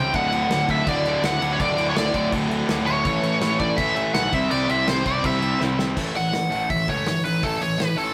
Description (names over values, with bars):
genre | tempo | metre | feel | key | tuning
punk rock | 165 BPM | 4/4 | straight | unclear | A4 = 440 Hz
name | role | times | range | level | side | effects
biting lead guitar | melody | 0.0-8.1 s | A4 to G5 | -26 LUFS | equal | overdrive, delay
tight distorted guitar | riff | 0.0-8.1 s | D2 to C4 | -30 LUFS | equal | distortion
tight distorted guitar | riff | 0.0-6.0 s | D2 to C4 | -32 LUFS | equal | distortion
fuzz picked electric bass | bass | 0.0-8.1 s | D1 to A2 | -32 LUFS | equal | overdrive
thick fuzz guitar | riff | 0.1-5.8 s | D2 to C4 | -30 LUFS | equal | distortion
loose indie drum kit | drums | 0.1-8.1 s | crash cymbal, hi-hat, kick drum, snare drum | -31 LUFS | equal | none
room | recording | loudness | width
light reverb | rough rehearsal-room recording | -22 LUFS | mono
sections
0.0-6.0 A section; 6.0-8.1 B section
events
drum fill 5.6-6.0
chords
0.1 D; 3.0 A; 4.3 C; 6.0 A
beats
| 0.14 0.50 0.86 1.23 | 1.59 1.96 2.32 2.68 | 3.05 3.41 3.77 4.14 | 4.50 4.87 5.23 5.60 | 5.96 6.33 6.69 7.06 | 7.43 7.79